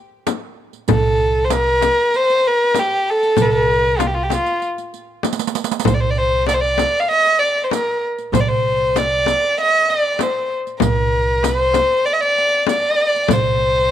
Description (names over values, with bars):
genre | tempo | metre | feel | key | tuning
Arabic maqam ensemble | 97 BPM | 4/4 | straight | C maqam rast | A4 = 437 Hz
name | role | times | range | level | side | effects
darbuka | percussion | 0.3-13.7 s | none | -25 LUFS | right 8 dB | none
frame drum | percussion | 0.3-13.4 s | none | -21 LUFS | left 12 dB | none
riq | percussion | 0.3-13.4 s | none | -25 LUFS | right 14 dB | none
warm violin | melody | 0.9-13.9 s | F4 to F5 | -16 LUFS | equal | none
upright bass | bass | 0.9-13.9 s | C2 | -22 LUFS | right 1 dB | none
room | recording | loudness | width
studio reverb | 1960s-style stereo with parts hard left and right | -15 LUFS | side -10 dB against mid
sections
0.0-13.9 A section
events
drum fill 5.2-5.9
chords
none